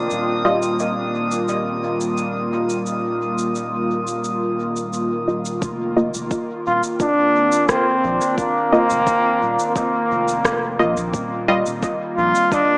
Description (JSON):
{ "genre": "ambient dub", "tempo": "87 BPM", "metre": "4/4", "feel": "straight", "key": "unclear", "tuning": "A4 = 440 Hz", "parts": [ { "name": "airy breathy pad", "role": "sustained chords", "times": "0.0-12.8 s", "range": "Eb3 to Bb4", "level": "-24 LUFS", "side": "equal", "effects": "chorus" }, { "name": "soft dub sub bass", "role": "bass", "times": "0.0-12.3 s", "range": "Eb1 to Bb1", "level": "-30 LUFS", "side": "equal", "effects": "none" }, { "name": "drifting glass-harmonics texture", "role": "texture", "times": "0.0-5.6 s", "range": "Eb6", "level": "-27 LUFS", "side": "equal", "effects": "chorus, built-in reverb" }, { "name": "electronic shaker and rim click", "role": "drums", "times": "0.1-12.7 s", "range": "none", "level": "-26 LUFS", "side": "equal", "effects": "overdrive, dub echo" }, { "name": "filtered dub chord stab", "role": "stabs", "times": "0.4-0.6, 5.3-11.6 s", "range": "G3 to Eb5", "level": "-23 LUFS", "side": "equal", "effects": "chorus, cassette tape, dub echo" }, { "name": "electronic kick drum", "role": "drums", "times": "5.6-12.7 s", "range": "none", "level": "-25 LUFS", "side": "equal", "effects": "overdrive" }, { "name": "bright trombone", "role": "melody", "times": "6.7-12.8 s", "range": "Bb3 to F4", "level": "-19 LUFS", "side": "equal", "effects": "dub echo" } ], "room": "moderate spring reverb, RT60 2.7 s", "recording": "echo-heavy mix, small speaker sound", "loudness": "-17 LUFS", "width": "side -40 dB against mid", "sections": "0.0-5.6 A section; 5.6-12.8 B section", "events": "none", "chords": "0.1 Ebadd9; 5.6 F7sus4; 11.1 Ebadd9", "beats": "| 0.10 0.79 1.48 2.17 | 2.86 3.55 4.24 4.93 | 5.62 6.31 7.00 7.69 | 8.38 9.07 9.76 10.45 | 11.14 11.83 12.52" }